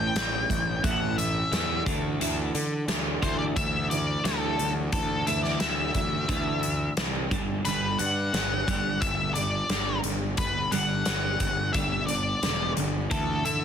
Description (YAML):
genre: quiet-loud alternative rock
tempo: 88 BPM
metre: 4/4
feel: straight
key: unclear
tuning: A4 = 442 Hz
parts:
  - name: octave-fuzz lead guitar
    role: melody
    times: 0.0-13.6 s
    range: A4 to G5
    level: -29 LUFS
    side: left 2 dB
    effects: distortion, plate reverb
  - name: twelve-string electric guitar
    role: arpeggios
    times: 0.0-13.6 s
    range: G2 to A3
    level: -32 LUFS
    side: right 3 dB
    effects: analog chorus
  - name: fuzz picked electric bass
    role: bass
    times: 0.0-13.6 s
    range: E1 to D3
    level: -30 LUFS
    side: equal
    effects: overdrive
  - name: big rock drum kit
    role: drums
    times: 0.2-13.6 s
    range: hi-hat, kick drum, snare drum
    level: -30 LUFS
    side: equal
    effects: none
room: light reverb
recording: dense, heavily limited modern master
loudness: -24 LUFS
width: side -8 dB against mid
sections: 0.0-13.6 A section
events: none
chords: 0.0 A5; 1.9 Dsus2; 7.3 G5; 13.1 Dsus2